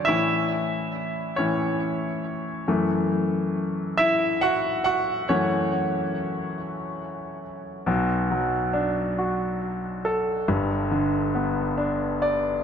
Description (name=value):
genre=pop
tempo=46 BPM (dotted quarters)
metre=6/8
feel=straight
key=B minor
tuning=A4 = 440 Hz
part: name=bright concert grand piano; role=solo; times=0.0-12.6 s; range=G1 to F#5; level=-23 LUFS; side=equal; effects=tape echo
room=wet lush hall reverb, RT60 2.2 s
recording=dreamy mix soaked in reverb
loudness=-22 LUFS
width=side -7 dB against mid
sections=0.0-7.9 A section; 7.9-12.6 B section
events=grand piano solo 0.0-7.9; grand piano fill 11.8-12.6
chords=0.1 A; 2.7 F#m7; 7.9 Bm7; 10.5 G